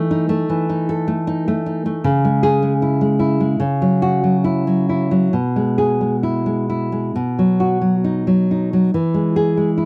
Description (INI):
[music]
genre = romantic piece for solo classical guitar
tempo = 65-78 BPM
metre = 4/4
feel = rubato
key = E major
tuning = A4 = 439 Hz
[part]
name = nylon-string guitar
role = solo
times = 0.0-9.9 s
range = B2 to A4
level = -18 LUFS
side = equal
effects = none
[sound]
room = little or no reverb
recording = dry, close 1970s-style studio recording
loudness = -18 LUFS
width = mono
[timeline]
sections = 0.0-9.9 A section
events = none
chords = 0.0 Esus4; 2.0 C#m; 3.6 F#5/C#; 5.3 E/B; 7.1 B; 8.9 E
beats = 0.47 1.25 | 2.03 2.80 3.59 4.44 | 5.33 6.25 7.14 8.03 | 8.92 9.77